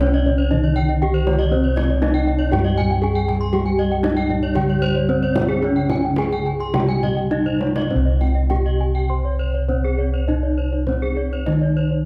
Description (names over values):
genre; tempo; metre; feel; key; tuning
Balinese gamelan; 101-119 BPM; 4/4; straight; C pelog; A4 = 440 Hz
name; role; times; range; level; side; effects
gamelan-type bronze metallophone; melody; 0.0-12.1 s; C4 to C5; -26 LUFS; equal; none
gamelan-type bronze metallophone; accompaniment; 0.0-7.9 s; C3 to G3-30c; -28 LUFS; equal; none
gamelan-type bronze metallophone; arpeggios; 0.0-12.1 s; C5 to C6; -30 LUFS; equal; none
gamelan-type bossed gongs; bass; 0.0-12.1 s; C2 to G4-30c; -23 LUFS; equal; none
kendang; percussion; 0.0-11.6 s; none; -30 LUFS; equal; none
gamelan-type bronze metallophone; arpeggios; 0.1-11.9 s; Ab4-20c to C6; -30 LUFS; equal; none
room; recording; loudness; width
moderate recital hall reverb, RT60 1.7 s; dark, warm production; -19 LUFS; mono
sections
0.0-7.9 A section; 7.9-12.1 B section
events
drum fill 7.5-7.9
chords
none